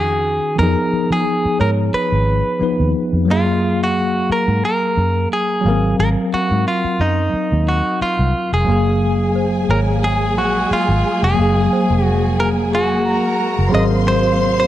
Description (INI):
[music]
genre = soul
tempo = 89 BPM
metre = 4/4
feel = swing 54% on 16ths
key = unclear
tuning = A4 = 440 Hz
[part]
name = direct-recorded clean electric guitar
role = melody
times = 0.0-14.7 s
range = Eb4 to Eb5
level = -19 LUFS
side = equal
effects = spring reverb
[part]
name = bell-like tine electric piano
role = accompaniment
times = 0.0-14.7 s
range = Eb3 to F5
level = -20 LUFS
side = left 2 dB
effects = medium stereo tremolo
[part]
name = vintage muted fingered electric bass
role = bass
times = 0.0-14.7 s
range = F1 to F3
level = -18 LUFS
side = equal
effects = none
[part]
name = worn celesta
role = texture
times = 1.6-2.7, 9.4-14.7 s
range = Ab4 to Ab5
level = -27 LUFS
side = right 2 dB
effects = none
[part]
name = warm studio string section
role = second line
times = 8.7-14.7 s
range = Ab4 to C6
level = -24 LUFS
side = right 1 dB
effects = none
[part]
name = warm studio string section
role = sustained chords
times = 8.7-14.7 s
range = C3 to F5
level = -25 LUFS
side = right 1 dB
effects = none
[sound]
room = studio reverb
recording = dry, close 1970s-style studio recording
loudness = -14 LUFS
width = side -13 dB against mid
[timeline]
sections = 0.0-8.7 A section; 8.7-14.7 B section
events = none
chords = 0.0 Ebm9; 0.6 Db9/F; 3.3 Gbmaj9; 5.6 Ab13; 8.7 Gbmaj9; 13.7 Ab13